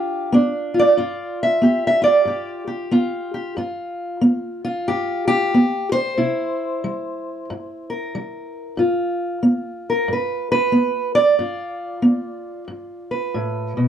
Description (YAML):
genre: acoustic country blues, solo or duo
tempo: 92 BPM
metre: 4/4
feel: swing 62% on 8ths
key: G mixolydian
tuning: A4 = 440 Hz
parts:
  - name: fingerpicked steel-string acoustic guitar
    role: solo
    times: 0.0-13.9 s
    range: G2 to E5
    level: -18 LUFS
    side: right 1 dB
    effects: none
room: wet studio reverb, RT60 0.5 s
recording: dark, warm production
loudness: -18 LUFS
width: side -9 dB against mid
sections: 0.0-3.6 A section; 3.6-13.9 B section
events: steel-string acoustic guitar solo 0.0-3.6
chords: 0.0 G7; 6.2 C7; 8.8 G7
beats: 0.33 | 0.98 1.63 2.29 2.94 | 3.59 4.24 4.89 5.54 | 6.19 6.84 7.49 8.15 | 8.80 9.45 10.10 10.75 | 11.40 12.05 12.70 13.35